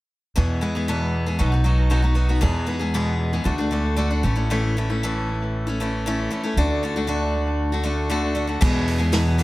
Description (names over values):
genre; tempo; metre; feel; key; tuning
folk rock and heartland rock; 116 BPM; 4/4; straight; E mixolydian; A4 = 440 Hz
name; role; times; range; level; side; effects
picked steel-string acoustic guitar; accompaniment; 0.4-9.4 s; E2 to G#4; -23 LUFS; left 1 dB; analog delay
upright bass; bass; 0.4-9.4 s; A1 to E2; -22 LUFS; equal; none
vintage drum kit; drums; 8.6-9.4 s; crash cymbal, hi-hat, kick drum, snare drum; -23 LUFS; right 1 dB; none
room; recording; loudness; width
light reverb, studio reverb; echo-heavy mix; -20 LUFS; side -18 dB against mid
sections
0.4-8.6 A section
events
none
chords
0.4 E; 1.4 B; 2.4 E; 3.5 D; 4.2 A; 6.6 D; 8.6 E